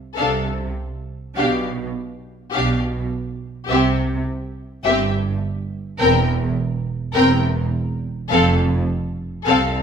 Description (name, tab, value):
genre	quick classical-period movement for string orchestra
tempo	104 BPM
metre	4/4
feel	rubato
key	C major, F major from 6.0 s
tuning	A4 = 439 Hz
part	dark studio violin section	melody	0.2-9.7 s	E5 to G5	-24 LUFS	left 4 dB	none
part	warm studio violin section	second line	0.2-9.7 s	G4 to Bb4	-21 LUFS	left 3 dB	none
part	rich studio viola section	accompaniment	0.2-9.7 s	C4 to D4	-22 LUFS	right 1 dB	none
part	warm studio cello section	bass	0.2-9.8 s	C2 to C3	-24 LUFS	right 2 dB	none
part	warm studio double bass section	bass	0.2-9.8 s	E1 to C2	-25 LUFS	right 3 dB	none
room	light reverb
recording	close, detailed microphones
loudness	-18 LUFS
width	side -7 dB against mid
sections	0.0-9.8 A section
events	none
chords	0.0 Dm7/C; 1.4 G7/B; 3.7 C; 6.0 C7/E; 8.3 F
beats	0.18 0.77 | 1.37 1.96 2.54 3.12 | 3.69 4.28 4.86 5.43 | 6.01 6.58 7.15 7.73 | 8.31 8.89 9.47